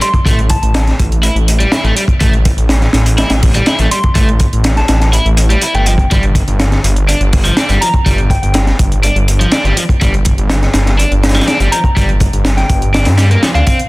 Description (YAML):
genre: breakbeat, breaks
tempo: 123 BPM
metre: 4/4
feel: straight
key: unclear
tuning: A4 = 438 Hz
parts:
  - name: soft synth bell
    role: melody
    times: 0.0-0.7, 3.9-8.5, 11.7-13.7 s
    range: F5 to C6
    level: -20 LUFS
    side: equal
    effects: chorus, AM radio sound, digital delay
  - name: overdriven electric guitar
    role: riff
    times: 0.0-13.8 s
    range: F3 to E4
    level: -18 LUFS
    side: equal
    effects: digital delay
  - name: crunchy breakbeat drum kit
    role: drums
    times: 0.0-13.8 s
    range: hi-hat, kick drum, snare drum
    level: -13 LUFS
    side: equal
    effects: none
  - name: electronic hi-hat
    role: drums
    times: 0.0-13.9 s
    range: none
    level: -25 LUFS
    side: right 2 dB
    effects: none
  - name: detuned saw bass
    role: bass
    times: 0.3-13.6 s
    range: G1 to G2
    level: -12 LUFS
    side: equal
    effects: none
room: small room reverb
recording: dense, heavily limited modern master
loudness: -9 LUFS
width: side -21 dB against mid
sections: 0.0-13.9 A section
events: none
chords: 0.0 A5; 5.9 G5